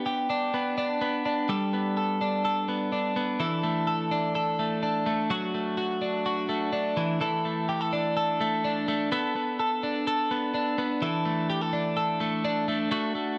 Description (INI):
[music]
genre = indie pop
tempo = 126 BPM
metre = 4/4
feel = straight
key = unclear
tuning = A4 = 441 Hz
[part]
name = twelve-string electric guitar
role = solo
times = 0.0-13.4 s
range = E3 to A4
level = -28 LUFS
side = equal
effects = spring reverb
[sound]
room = moderate studio ambience, RT60 0.4 s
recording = none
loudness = -28 LUFS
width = mono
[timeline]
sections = 0.0-1.5 A section; 1.5-13.4 B section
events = none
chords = 0.0 G; 1.5 Gadd9; 3.4 Asus4; 5.3 D; 7.0 Asus4; 9.1 Bm7; 11.0 Asus4